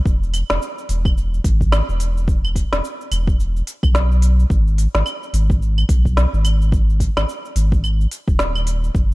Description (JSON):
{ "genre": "organic downtempo", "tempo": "108 BPM", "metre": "4/4", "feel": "swing 59% on 16ths", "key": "G# minor", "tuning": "A4 = 440 Hz", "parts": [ { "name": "warm sub bass", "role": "bass", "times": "0.1-9.1 s", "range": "D#1 to B1", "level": "-17 LUFS", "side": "equal", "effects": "sidechain pumping" }, { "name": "electronic kick drum", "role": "drums", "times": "0.1-9.1 s", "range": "none", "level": "-18 LUFS", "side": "equal", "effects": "none" }, { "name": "organic electronic drum kit", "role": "drums", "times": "0.1-9.1 s", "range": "cabasa, claves, hi-hat, snare drum", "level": "-24 LUFS", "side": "equal", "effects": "none" } ], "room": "little or no reverb", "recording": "dark, warm production", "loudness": "-16 LUFS", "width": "side -20 dB against mid", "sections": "0.0-9.1 A section", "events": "none", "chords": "none", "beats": "| 0.06 0.61 1.17 1.72 | 2.28 2.83 3.39 3.94 | 4.50 5.06 5.61 6.17 | 6.72 7.28 7.83 8.39 | 8.95" }